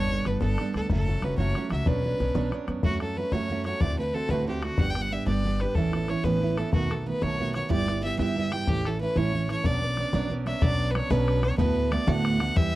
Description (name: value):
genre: celtic folk, Celtic jig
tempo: 123 BPM (dotted quarters)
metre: 6/8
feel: straight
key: B minor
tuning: A4 = 440 Hz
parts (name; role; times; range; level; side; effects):
- clear fiddle; melody; 0.0-12.8 s; F#4 to G5; -30 LUFS; left 1 dB; none
- fingerpicked steel-string acoustic guitar; accompaniment; 0.0-12.8 s; D2 to A4; -28 LUFS; right 4 dB; none
- upright bass; bass; 0.0-12.8 s; F#1 to F#2; -29 LUFS; left 1 dB; none
- bodhran; percussion; 0.0-12.6 s; none; -29 LUFS; left 2 dB; none
room: little or no reverb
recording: dry, close 1970s-style studio recording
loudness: -24 LUFS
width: side -16 dB against mid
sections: 0.0-2.8 A section; 2.8-10.6 B section; 10.6-12.8 C section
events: none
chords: 0.0 Gadd9; 0.9 F#m; 1.9 Bmadd9; 2.8 F#m; 3.8 D7; 4.8 G; 5.8 Aadd9; 6.7 B7; 7.7 Em/G; 8.7 A; 9.7 Bmadd9; 11.6 D6